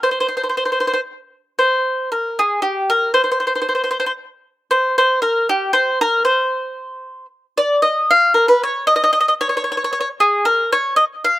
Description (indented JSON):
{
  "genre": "italian folk",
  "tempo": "116 BPM",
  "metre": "3/4",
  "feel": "swing 54% on 8ths",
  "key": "unclear",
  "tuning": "A4 = 436 Hz",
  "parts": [
    { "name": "mandolin", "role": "solo", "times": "0.0-11.4 s", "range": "G4 to F5", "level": "-15 LUFS", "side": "equal", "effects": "slapback echo" }
  ],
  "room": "little or no reverb",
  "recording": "recorded outdoors, with no room sound",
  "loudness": "-15 LUFS",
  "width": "side -15 dB against mid",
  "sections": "0.0-7.8 A section; 7.8-11.4 B section",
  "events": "none",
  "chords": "none"
}